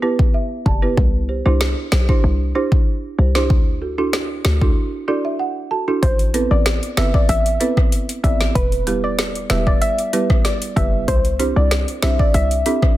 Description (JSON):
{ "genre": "dancehall", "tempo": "95 BPM", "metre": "4/4", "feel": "straight", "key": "unclear", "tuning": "A4 = 440 Hz", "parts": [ { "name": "folk marimba with medium mallets", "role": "accompaniment", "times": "0.0-12.8 s", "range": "G3 to A5", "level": "-22 LUFS", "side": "right 3 dB", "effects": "none" }, { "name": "afro-pop drum kit", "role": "drums", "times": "0.2-13.0 s", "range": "hi-hat, kick drum, rim click, snare drum", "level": "-18 LUFS", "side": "equal", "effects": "overdrive" }, { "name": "short 808-style bass", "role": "bass", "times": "0.7-12.6 s", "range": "E1 to D2", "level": "-19 LUFS", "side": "equal", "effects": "none" }, { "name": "soft round pluck", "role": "melody", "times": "6.0-12.8 s", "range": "B4 to E5", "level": "-22 LUFS", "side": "left 1 dB", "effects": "chorus, digital delay" } ], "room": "digital ambience", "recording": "dense, heavily limited modern master", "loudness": "-15 LUFS", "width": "side -15 dB against mid", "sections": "0.0-6.0 A section; 6.0-13.0 B section", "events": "marimba fill 0.0-1.0, 4.8-6.0; break 4.8-6.0", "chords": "0.0 Em; 1.0 Cadd9; 3.5 Dadd9; 6.0 Amadd9; 8.6 Em; 11.1 Cadd9" }